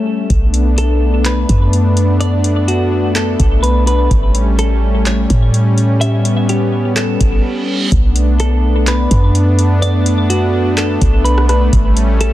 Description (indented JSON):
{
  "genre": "hip hop, atmospheric cloud-rap",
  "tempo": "126 BPM",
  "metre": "4/4",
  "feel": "half-time",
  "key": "B minor",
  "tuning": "A4 = 440 Hz",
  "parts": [
    { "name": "warm analog pad", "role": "sustained chords", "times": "0.0-12.3 s", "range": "G3 to D4", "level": "-18 LUFS", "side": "left 1 dB", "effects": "chorus, sidechain pumping" },
    { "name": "clean 808-style bass", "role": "bass", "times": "0.3-12.3 s", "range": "A1 to A2", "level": "-13 LUFS", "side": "equal", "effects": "none" },
    { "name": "booming analog drum machine", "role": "drums", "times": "0.3-12.3 s", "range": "handclaps, hi-hat, kick drum, rim click", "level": "-16 LUFS", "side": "equal", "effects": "none" },
    { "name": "semi-hollow electric guitar", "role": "melody", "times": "0.8-12.3 s", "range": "F#4 to E5", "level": "-21 LUFS", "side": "left 1 dB", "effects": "spring reverb, low-pass filter, digital delay" },
    { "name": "reverse cymbal", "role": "sound effects", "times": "7.4-7.9 s", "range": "none", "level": "-24 LUFS", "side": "right 4 dB", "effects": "none" }
  ],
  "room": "little or no reverb",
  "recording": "dense, heavily limited modern master",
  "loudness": "-11 LUFS",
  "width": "side -14 dB against mid",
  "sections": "0.0-7.9 A section; 7.9-12.3 B section",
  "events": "break 0.0-0.3, 7.4-7.9; reverse cymbal 7.4-7.9",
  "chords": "0.3 Bm7; 4.1 A7; 7.9 Bm7; 11.7 A7"
}